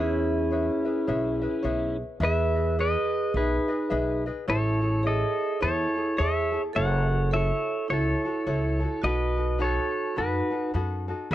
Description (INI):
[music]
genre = Hawaiian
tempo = 106 BPM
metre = 4/4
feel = swing 60% on 8ths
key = E major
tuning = A4 = 435 Hz
[part]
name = pedal steel guitar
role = melody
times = 0.0-10.7 s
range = C#4 to F#5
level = -28 LUFS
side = left 2 dB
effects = none
[part]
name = vibraphone with medium hard mallets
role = second line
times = 0.0-11.3 s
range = D#4 to A4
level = -30 LUFS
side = right 5 dB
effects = none
[part]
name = tenor ukulele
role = accompaniment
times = 0.0-11.3 s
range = D#4 to E5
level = -33 LUFS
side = left 3 dB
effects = none
[part]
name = upright bass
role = bass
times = 0.0-11.3 s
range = F#1 to F#2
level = -28 LUFS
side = equal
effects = none
[sound]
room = little or no reverb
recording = dry, close 1970s-style studio recording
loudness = -24 LUFS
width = side -13 dB against mid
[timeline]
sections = 0.0-2.2 A section; 2.2-11.3 B section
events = none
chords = 0.0 E6; 2.2 Emaj7; 4.5 Amaj7; 6.8 F#m7; 9.0 B7